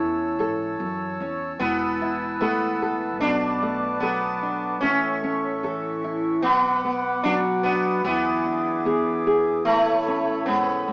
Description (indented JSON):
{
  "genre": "acoustic folk duo or small band",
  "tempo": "74 BPM",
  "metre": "4/4",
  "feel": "straight",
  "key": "unclear",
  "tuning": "A4 = 441 Hz",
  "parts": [
    { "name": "sitar", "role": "second line", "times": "0.0-10.9 s", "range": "A3 to D4", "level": "-24 LUFS", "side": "equal", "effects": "none" },
    { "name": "nylon-string guitar", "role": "accompaniment", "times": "0.0-10.9 s", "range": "G#2 to A4", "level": "-25 LUFS", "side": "equal", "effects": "none" },
    { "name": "mellow accordion", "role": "sustained chords", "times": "0.0-10.9 s", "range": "G#4 to E6", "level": "-27 LUFS", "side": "equal", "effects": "none" },
    { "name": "upright bass", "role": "bass", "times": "0.0-10.9 s", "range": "E1 to G#2", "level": "-35 LUFS", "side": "equal", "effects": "none" }
  ],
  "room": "moderate large studio reverb, RT60 1.0 s",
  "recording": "band playing live in one room, small speaker sound",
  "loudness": "-21 LUFS",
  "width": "side -27 dB against mid",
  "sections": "0.0-10.9 A section",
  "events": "none",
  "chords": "0.0 A; 1.6 Esus4; 3.2 Bm7; 4.8 A; 6.4 Bm; 8.1 E7; 9.7 Aadd9"
}